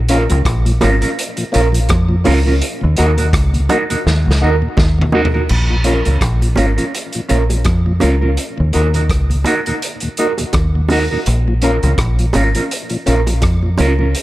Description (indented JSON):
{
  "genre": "roots reggae",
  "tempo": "83 BPM",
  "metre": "4/4",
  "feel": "swing 57% on 16ths",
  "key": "Bb minor",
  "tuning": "A4 = 437 Hz",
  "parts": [
    { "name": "deep dub fingered electric bass", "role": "bass", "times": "0.0-14.1 s", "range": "Ab1 to F2", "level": "-14 LUFS", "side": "equal", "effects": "none" },
    { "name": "mellow electric guitar", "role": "accompaniment", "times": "0.1-14.1 s", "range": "Db4 to Bb4", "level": "-20 LUFS", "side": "right 3 dB", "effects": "phaser, tape echo" },
    { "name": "mellow tonewheel organ", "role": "accompaniment", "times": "0.1-14.1 s", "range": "Eb2 to Gb4", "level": "-22 LUFS", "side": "left 1 dB", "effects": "slow rotary speaker, tape echo" },
    { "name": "vintage drum kit", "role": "drums", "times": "0.1-14.2 s", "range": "crash cymbal, hi-hat, kick drum, rim click, snare drum, toms", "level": "-20 LUFS", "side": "equal", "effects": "none" },
    { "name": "bongos", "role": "percussion", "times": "0.8-14.0 s", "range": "none", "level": "-22 LUFS", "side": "right 3 dB", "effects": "none" }
  ],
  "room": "small room ambience",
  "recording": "none",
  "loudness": "-12 LUFS",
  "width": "side -16 dB against mid",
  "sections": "0.0-5.5 A section; 5.5-14.2 B section",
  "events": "drum fill 4.1-5.5",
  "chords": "0.0 Bbm; 2.6 Ebm; 5.5 Bbm; 8.4 Ebm; 11.3 Bbm"
}